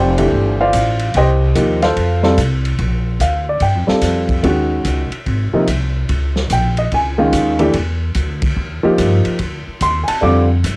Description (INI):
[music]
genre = jazz piano trio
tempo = 145 BPM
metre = 4/4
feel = swing 65% on 8ths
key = unclear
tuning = A4 = 439 Hz
[part]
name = dark baby grand piano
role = melody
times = 0.0-10.5 s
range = C3 to D6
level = -15 LUFS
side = equal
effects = cassette tape
[part]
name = upright bass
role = bass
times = 0.0-10.8 s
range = F1 to G2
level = -17 LUFS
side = equal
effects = none
[part]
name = vintage drum kit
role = drums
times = 0.2-10.8 s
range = hi-hat, kick drum, ride cymbal, snare drum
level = -23 LUFS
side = equal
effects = cassette tape
[sound]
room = light reverb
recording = home recording on cassette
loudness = -13 LUFS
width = side -25 dB against mid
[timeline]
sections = 0.0-2.8 A section; 2.8-10.8 A section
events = grand piano solo 0.0-10.8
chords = 0.0 F69; 1.1 Cm7; 2.0 F; 2.8 Bb6; 4.4 Ebm7; 5.3 Ab; 6.1 Db69; 7.7 Dsus2; 8.6 Eb; 9.4 Dm7